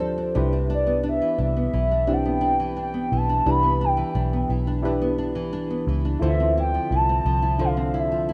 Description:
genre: indie pop.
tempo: 87 BPM.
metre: 4/4.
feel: straight.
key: C major.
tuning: A4 = 440 Hz.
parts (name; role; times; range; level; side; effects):
hollow clarinet-like synth lead; melody; 0.0-8.3 s; C5 to B5; -26 LUFS; equal; subtle chorus, analog delay.
nylon-string guitar; accompaniment; 0.0-8.3 s; C3 to A4; -30 LUFS; equal; analog chorus, warbly pitch drift.
reed electric piano; accompaniment; 0.0-8.3 s; C4 to C5; -32 LUFS; equal; fast tremolo.
vintage muted picked electric bass; bass; 0.0-8.3 s; B1 to D2; -27 LUFS; equal; none.
room: light reverb, digital ambience.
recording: rough home demo mix, nothing above 10.3 kHz.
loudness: -23 LUFS.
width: mono.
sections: 0.0-8.3 A section.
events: none.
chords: 0.4 Cmaj9; 6.2 Dm9.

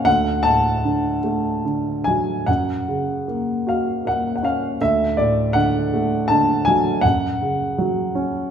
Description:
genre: classical, lyrical solo piano.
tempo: 71-82 BPM.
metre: 3/4.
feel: rubato.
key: unclear.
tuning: A4 = 440 Hz.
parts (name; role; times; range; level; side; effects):
dark baby grand piano; solo; 0.0-8.5 s; D2 to A5; -18 LUFS; equal; none.
room: wet recital hall reverb, RT60 1.5 s.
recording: recorded in a church or concert hall.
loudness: -18 LUFS.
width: side -8 dB against mid.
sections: 0.0-8.5 A section.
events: none.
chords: 0.1 D; 2.5 F#; 4.8 D; 7.0 F#5.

